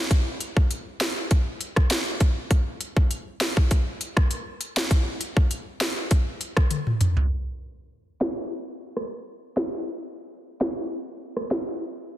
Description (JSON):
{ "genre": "dancehall", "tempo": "100 BPM", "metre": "4/4", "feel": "straight", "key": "none", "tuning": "none", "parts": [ { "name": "island pop drum kit", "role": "drums", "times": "0.1-11.7 s", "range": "hi-hat, kick drum, rim click, snare drum, toms", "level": "-23 LUFS", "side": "equal", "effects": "overdrive" } ], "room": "light reverb", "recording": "dense, heavily limited modern master, low-pass filter", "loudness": "-23 LUFS", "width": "side -13 dB against mid", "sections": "0.0-7.3 A section; 7.3-12.2 B section", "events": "drum fill 6.7-7.3", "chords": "none" }